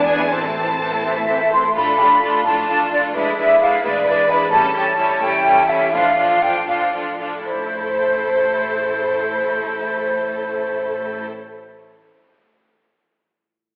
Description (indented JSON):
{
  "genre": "classical, dramatic, fast romantic movement for symphony orchestra",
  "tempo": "74-89 BPM (dotted quarters)",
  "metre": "6/8",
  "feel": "rubato",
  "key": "A minor",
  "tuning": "A4 = 440 Hz",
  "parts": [
    { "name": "rich studio violin section", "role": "melody", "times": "0.0-11.3 s", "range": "E4 to A5", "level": "-30 LUFS", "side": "equal", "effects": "none" },
    { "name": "rich symphonic violin section", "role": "second line", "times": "0.0-11.2 s", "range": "E4 to C5", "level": "-28 LUFS", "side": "equal", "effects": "none" },
    { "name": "clear symphonic viola section", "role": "accompaniment", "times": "0.0-11.2 s", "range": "E3 to D4", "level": "-27 LUFS", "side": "equal", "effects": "none" },
    { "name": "concert harp", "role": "arpeggios", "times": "0.0-12.0 s", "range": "A2 to E5", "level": "-36 LUFS", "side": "equal", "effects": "none" },
    { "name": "rich studio cello section", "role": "bass", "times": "0.0-11.2 s", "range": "A2 to D4", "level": "-31 LUFS", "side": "equal", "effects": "none" },
    { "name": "rich symphonic double bass section", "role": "bass", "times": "0.0-11.3 s", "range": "A1 to E2", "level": "-41 LUFS", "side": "equal", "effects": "none" },
    { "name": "large flute ensemble", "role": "second line", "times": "1.0-11.2 s", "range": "C5 to C6", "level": "-19 LUFS", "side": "equal", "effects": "none" }
  ],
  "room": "wet scoring stage reverb, RT60 1.9 s",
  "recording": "telephone sound",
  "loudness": "-18 LUFS",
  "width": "mono",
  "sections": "0.0-1.7 A section; 1.7-7.5 B section; 7.5-10.5 C section",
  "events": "slowing down 3.8-7.5",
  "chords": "0.3 Am; 1.7 Dm/A; 3.1 E7/A; 4.5 A7; 5.9 Dm/A; 7.5 Am"
}